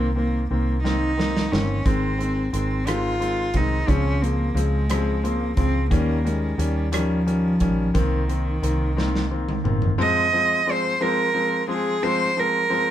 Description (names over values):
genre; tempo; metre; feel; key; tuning
six-eight pop ballad; 59 BPM (dotted quarters); 6/8; straight; Ab major; A4 = 442 Hz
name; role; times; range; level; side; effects
warm cello; melody; 0.0-12.9 s; Eb3 to Eb5; -23 LUFS; right 2 dB; none
bright concert grand piano; accompaniment; 0.0-12.9 s; Db3 to Db4; -26 LUFS; left 3 dB; none
vintage muted fingered electric bass; bass; 0.0-10.0 s; G1 to Eb2; -24 LUFS; equal; none
modern studio drum kit; drums; 0.9-10.0 s; hi-hat, kick drum, rim click, snare drum, toms; -26 LUFS; right 1 dB; none
room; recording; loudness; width
moderate studio reverb, RT60 0.6 s; band playing live in one room; -20 LUFS; side -11 dB against mid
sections
0.0-10.0 A section; 10.0-12.9 B section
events
drum fill 0.8-1.9, 9.0-10.0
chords
0.0 Cm7; 1.9 Ab; 3.9 Dbmaj7; 5.9 Eb7; 8.0 Cm7; 10.0 Ab6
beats
0.84 | 1.85 2.87 | 3.89 4.90 | 5.92 6.94 | 7.96 8.97 | 9.99 11.00 | 12.02